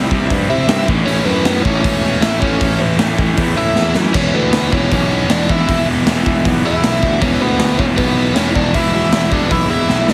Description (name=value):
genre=punk rock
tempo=156 BPM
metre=4/4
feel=straight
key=E mixolydian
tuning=A4 = 443 Hz
part: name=biting overdriven guitar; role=riff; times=0.0-10.1 s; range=E2 to C4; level=-24 LUFS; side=equal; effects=none
part: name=distorted electric guitar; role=riff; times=0.0-10.1 s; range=E2 to C4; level=-26 LUFS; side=equal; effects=overdrive
part: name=distorted electric guitar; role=riff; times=0.0-10.1 s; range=A2 to E4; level=-26 LUFS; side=equal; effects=distortion
part: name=fuzz picked electric bass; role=bass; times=0.0-10.1 s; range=E1 to C3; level=-21 LUFS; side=equal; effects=overdrive
part: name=raw garage drum kit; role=drums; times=0.1-10.1 s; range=crash cymbal, hi-hat, kick drum, snare drum, splash cymbal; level=-20 LUFS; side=equal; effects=none
part: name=biting lead guitar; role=melody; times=0.5-10.1 s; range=B3 to E5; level=-22 LUFS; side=equal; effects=overdrive, tape echo
room=light reverb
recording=heavily compressed radio sound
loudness=-15 LUFS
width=mono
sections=0.0-10.1 A section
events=drum fill 3.8-4.1, 9.9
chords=0.0 C; 0.9 A; 4.1 E